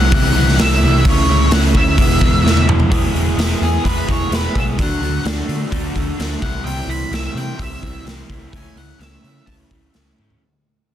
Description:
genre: quiet-loud alternative rock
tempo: 128 BPM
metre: 4/4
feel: straight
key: E mixolydian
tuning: A4 = 440 Hz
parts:
  - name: octave-fuzz lead guitar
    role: melody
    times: 0.0-9.5 s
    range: G#4 to B5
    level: -22 LUFS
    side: equal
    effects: distortion, analog delay
  - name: crunchy overdriven guitar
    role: riff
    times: 0.0-10.4 s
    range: C3 to G#4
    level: -21 LUFS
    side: right 1 dB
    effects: none
  - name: overdriven picked electric bass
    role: bass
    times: 0.0-10.3 s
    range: E1 to D3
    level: -18 LUFS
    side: equal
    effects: none
  - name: raw garage drum kit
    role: drums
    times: 0.1-10.4 s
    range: hi-hat, kick drum, snare drum, toms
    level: -18 LUFS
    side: equal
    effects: none
  - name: electric guitar through a small old amp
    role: arpeggios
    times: 2.9-10.4 s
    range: C3 to E4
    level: -30 LUFS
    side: right 1 dB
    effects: phaser
room: little or no reverb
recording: dense, heavily limited modern master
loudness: -14 LUFS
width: side -11 dB against mid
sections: 0.0-2.9 A section; 2.9-10.4 B section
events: drum fill 2.4-2.9, 10.2; fade-out 2.9-10.4; lead electric guitar solo 2.9-10.4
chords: 0.0 C; 1.1 A/C#; 2.0 E; 4.8 D; 6.4 C; 8.5 A/C#

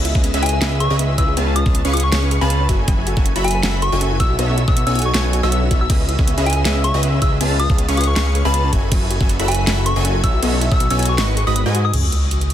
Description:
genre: future bass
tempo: 159 BPM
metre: 4/4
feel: swing 54% on 16ths, half-time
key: C# minor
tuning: A4 = 440 Hz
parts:
  - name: ethereal airy pad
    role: sustained chords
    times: 0.0-12.5 s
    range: B3 to E5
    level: -32 LUFS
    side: equal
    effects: none
  - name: airy dreamy lead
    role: arpeggios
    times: 0.0-11.9 s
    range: E5 to C#6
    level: -30 LUFS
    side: equal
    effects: chorus, sidechain pumping
  - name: soft round pluck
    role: arpeggios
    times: 0.0-11.9 s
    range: B3 to F#5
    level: -29 LUFS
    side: left 2 dB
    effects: chorus, cassette tape, sidechain pumping, tape echo
  - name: supersaw stab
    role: riff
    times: 0.0-11.9 s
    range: F#3 to C#6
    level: -23 LUFS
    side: equal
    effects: sidechain pumping, tape echo
  - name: fat analog bass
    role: bass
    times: 0.0-12.5 s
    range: F#1 to G#2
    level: -19 LUFS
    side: equal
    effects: sidechain pumping
  - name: dubstep drum kit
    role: drums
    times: 0.0-12.5 s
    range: crash cymbal, hi-hat, snare drum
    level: -24 LUFS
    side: right 1 dB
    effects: none
  - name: electronic kick drum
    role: drums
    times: 0.1-10.8 s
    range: none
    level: -17 LUFS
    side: equal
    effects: none
  - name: soft struck synth lead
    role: melody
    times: 0.4-11.9 s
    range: G#5 to E6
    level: -24 LUFS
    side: left 2 dB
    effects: chorus, sidechain pumping, ping-pong delay
  - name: sub drop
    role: sound effects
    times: 11.9-12.5 s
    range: none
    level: -24 LUFS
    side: equal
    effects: none
room: digital ambience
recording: dense, heavily limited modern master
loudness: -15 LUFS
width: side -11 dB against mid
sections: 0.0-11.9 A section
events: drop 0.0-11.9; kick drops out 11.6-11.9; impact 11.9-12.5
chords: 0.0 C#m7; 1.4 C#7b13; 2.7 F#m7; 4.2 B9sus4; 5.9 C#m7; 7.4 C#7b13; 8.7 F#m7; 10.2 B9sus4; 11.2 G#m7; 11.9 C#m7

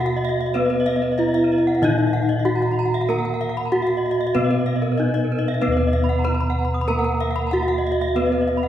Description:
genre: Balinese gamelan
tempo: 94 BPM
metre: 4/4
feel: straight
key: unclear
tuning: A4 = 439 Hz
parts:
  - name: gamelan-type bronze metallophone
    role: melody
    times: 0.0-8.7 s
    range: Cb4 to Cb5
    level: -22 LUFS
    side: equal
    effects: none
  - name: gamelan-type bronze metallophone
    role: accompaniment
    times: 0.0-8.7 s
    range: Eb3 to Cb4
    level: -30 LUFS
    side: right 3 dB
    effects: none
  - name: gamelan-type bronze metallophone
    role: arpeggios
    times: 0.0-8.6 s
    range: Bb4 to Eb6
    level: -29 LUFS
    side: right 3 dB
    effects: slapback echo
  - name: gamelan-type bossed gongs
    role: bass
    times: 0.0-8.7 s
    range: Eb2 to Cb5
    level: -23 LUFS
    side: equal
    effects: none
  - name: gamelan-type bronze metallophone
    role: arpeggios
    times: 0.1-8.7 s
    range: Bb4 to Cb6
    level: -27 LUFS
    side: left 3 dB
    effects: none
room: wet recital hall reverb, RT60 1.8 s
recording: heard from further back in the room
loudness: -18 LUFS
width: side -11 dB against mid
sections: 0.0-8.7 A section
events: none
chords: none

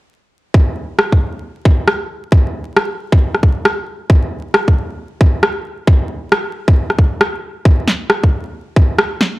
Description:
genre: UK garage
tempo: 135 BPM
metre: 4/4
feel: swing 62% on 16ths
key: none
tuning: none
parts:
  - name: electronic kick drum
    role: drums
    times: 0.5-8.9 s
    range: none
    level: -12 LUFS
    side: equal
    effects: none
  - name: electronic rim click and snare drum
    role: drums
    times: 1.0-9.3 s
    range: none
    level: -14 LUFS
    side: equal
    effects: none
room: light reverb, digital ambience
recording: dry, gritty hardware recording, vinyl crackle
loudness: -13 LUFS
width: side -19 dB against mid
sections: 0.5-9.4 A section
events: none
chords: none

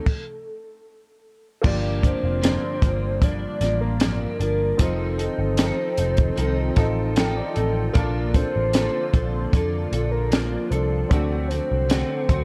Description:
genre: indie pop, bedroom pop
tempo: 76 BPM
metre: 4/4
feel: straight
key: unclear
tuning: A4 = 440 Hz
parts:
  - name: soft octave-layered synth lead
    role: melody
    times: 0.0-12.4 s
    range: A4 to D5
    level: -30 LUFS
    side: equal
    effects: phaser, subtle chorus
  - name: fingerpicked steel-string acoustic guitar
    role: accompaniment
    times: 0.0-12.4 s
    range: G2 to A4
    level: -31 LUFS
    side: equal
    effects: ensemble chorus, vibrato effect
  - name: warm upright piano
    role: accompaniment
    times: 0.0-12.4 s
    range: Bb3 to A5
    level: -35 LUFS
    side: equal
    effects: cassette tape
  - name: compact cocktail drum kit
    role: drums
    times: 0.1-12.4 s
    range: crash cymbal, hi-hat, kick drum, snare drum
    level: -24 LUFS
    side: equal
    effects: none
  - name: hollow soft pad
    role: sustained chords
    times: 2.6-12.4 s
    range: D3 to F4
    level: -37 LUFS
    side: equal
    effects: chorus
  - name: vintage muted picked electric bass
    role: bass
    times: 1.6-12.4 s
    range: F1 to F2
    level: -27 LUFS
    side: equal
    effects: none
room: light reverb, small room reverb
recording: dark, warm production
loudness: -22 LUFS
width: mono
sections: 0.0-1.6 A section; 1.6-12.4 B section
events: stop 0.1-1.6; upright piano fill 6.4-8.0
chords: 0.0 D; 1.6 Gm7; 4.8 F7; 8.0 Bbmaj7; 11.1 D7

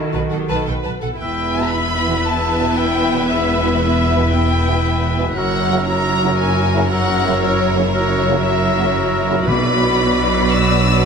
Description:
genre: cinematic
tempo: 116 BPM (dotted quarters)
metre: 12/8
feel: straight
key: unclear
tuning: A4 = 441 Hz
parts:
  - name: warm symphonic viola section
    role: accompaniment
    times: 0.0-11.1 s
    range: F#3 to B4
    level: -25 LUFS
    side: right 2 dB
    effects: none
  - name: clear French horn section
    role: sustained chords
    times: 0.0-11.1 s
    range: A#3 to A4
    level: -30 LUFS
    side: left 6 dB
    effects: none
  - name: rich symphonic cello section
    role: bass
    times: 0.0-11.1 s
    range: E2 to D#3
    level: -22 LUFS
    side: right 1 dB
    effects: none
  - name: rich chamber violin section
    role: melody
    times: 0.1-11.1 s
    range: C#5 to E6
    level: -22 LUFS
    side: left 4 dB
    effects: none
  - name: rich symphonic violin section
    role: second line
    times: 0.1-11.1 s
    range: A4 to E5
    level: -24 LUFS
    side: left 3 dB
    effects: none
  - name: rich symphonic double bass section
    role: bass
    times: 0.1-11.1 s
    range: E1 to B1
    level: -22 LUFS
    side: right 3 dB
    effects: none
  - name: silver concert flute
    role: second line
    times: 1.2-11.1 s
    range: D6 to E6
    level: -26 LUFS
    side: equal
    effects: none
  - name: warm clarinet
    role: second line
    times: 1.2-11.1 s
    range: E4 to F#4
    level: -26 LUFS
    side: right 1 dB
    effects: none
  - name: warm oboe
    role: second line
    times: 1.2-11.1 s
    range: A#4 to B4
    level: -27 LUFS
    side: left 1 dB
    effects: none
  - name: warm trombone section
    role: sustained chords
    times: 1.6-11.1 s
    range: B2 to F#3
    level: -25 LUFS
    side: right 5 dB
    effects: none
  - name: timpani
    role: percussion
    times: 9.5-10.0 s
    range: B2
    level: -24 LUFS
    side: right 1 dB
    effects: none
room: moderate scoring stage reverb, RT60 2.0 s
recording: close, detailed microphones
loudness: -14 LUFS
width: side -6 dB against mid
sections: 0.0-1.2 A section; 1.2-11.1 B section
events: none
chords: 0.0 B7; 1.2 Em; 5.4 F#7; 9.5 Bm

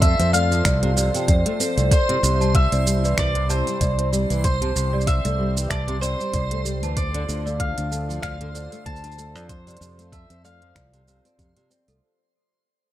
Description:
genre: folktronica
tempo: 95 BPM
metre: 4/4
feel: swing 56% on 16ths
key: unclear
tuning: A4 = 441 Hz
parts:
  - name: mandolin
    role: melody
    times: 0.0-11.7 s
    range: C5 to A5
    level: -27 LUFS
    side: equal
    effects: tape echo
  - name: worn celesta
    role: second line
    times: 0.0-12.0 s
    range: A4 to A5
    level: -29 LUFS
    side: right 2 dB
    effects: tape echo
  - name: warm analog pad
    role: sustained chords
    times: 0.0-12.0 s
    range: C3 to C5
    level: -34 LUFS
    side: equal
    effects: chorus
  - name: fingered electric bass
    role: bass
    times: 0.0-12.0 s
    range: C2 to F2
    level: -23 LUFS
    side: equal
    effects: none
  - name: electronic kick drum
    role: drums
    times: 0.0-11.5 s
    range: none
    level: -21 LUFS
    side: equal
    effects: none
  - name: organic electronic drum kit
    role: drums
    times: 0.0-12.0 s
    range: finger snaps, hi-hat, shaker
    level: -28 LUFS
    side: right 3 dB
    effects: none
  - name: backwards swelling texture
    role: texture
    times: 0.0-12.0 s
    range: C5 to C6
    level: -34 LUFS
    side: left 1 dB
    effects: built-in reverb
  - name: nylon-string guitar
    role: arpeggios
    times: 0.2-12.0 s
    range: C3 to D4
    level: -30 LUFS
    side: left 1 dB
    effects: tape echo
room: light reverb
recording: none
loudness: -19 LUFS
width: side -13 dB against mid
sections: 0.0-12.0 A section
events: fade-out 1.9-12.0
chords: 0.0 F; 1.9 Am7/C; 7.0 Dm; 9.5 F

